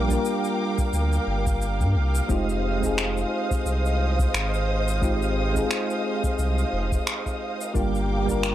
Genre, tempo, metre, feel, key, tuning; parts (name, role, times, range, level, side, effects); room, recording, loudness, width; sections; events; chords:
sunset chillout; 88 BPM; 4/4; swing 57% on 16ths; F dorian; A4 = 444 Hz
soft electric-piano-like synth keys; accompaniment; 0.0-8.5 s; G3 to Bb4; -27 LUFS; equal; chorus, auto-pan, tape echo
dark studio string section; sustained chords; 0.0-8.5 s; Bb4 to Eb6; -29 LUFS; right 1 dB
round analog bass; bass; 0.0-8.5 s; F1 to G2; -24 LUFS; equal; tube saturation
electronic kick drum; drums; 0.1-8.4 s; -27 LUFS; equal; overdrive
electronic shaker and finger snaps; drums; 0.1-8.5 s; -30 LUFS; equal; overdrive
digital ambience; dry, gritty hardware recording; -22 LUFS; side -12 dB against mid
0.0-8.5 A section
0.0 Gm7; 2.3 Fm7; 7.8 Gm7